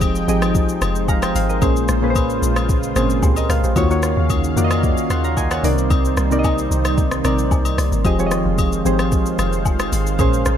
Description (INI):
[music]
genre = amapiano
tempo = 112 BPM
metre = 4/4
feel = straight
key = F minor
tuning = A4 = 441 Hz
[part]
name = soft electric-piano-like synth keys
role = accompaniment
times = 0.0-10.6 s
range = Bb2 to C6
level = -20 LUFS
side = equal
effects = chorus
[part]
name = warm analog pad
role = sustained chords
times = 0.0-10.6 s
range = Db3 to G5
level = -24 LUFS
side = right 2 dB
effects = chorus
[part]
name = deep log drum bass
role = bass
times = 0.0-10.6 s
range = F1 to F2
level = -21 LUFS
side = equal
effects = none
[part]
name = smooth R&B drum kit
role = drums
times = 0.0-10.6 s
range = hi-hat, kick drum, rim click, shaker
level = -22 LUFS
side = equal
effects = none
[part]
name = agogo bells and woodblock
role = percussion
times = 0.0-10.3 s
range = none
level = -30 LUFS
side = left 9 dB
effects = none
[sound]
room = digital ambience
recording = none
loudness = -15 LUFS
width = side -9 dB against mid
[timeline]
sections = 0.0-10.6 A section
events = none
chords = 0.0 Fm9; 1.6 Bbm9; 3.8 Ebm9; 5.6 Cm9; 8.0 Fm9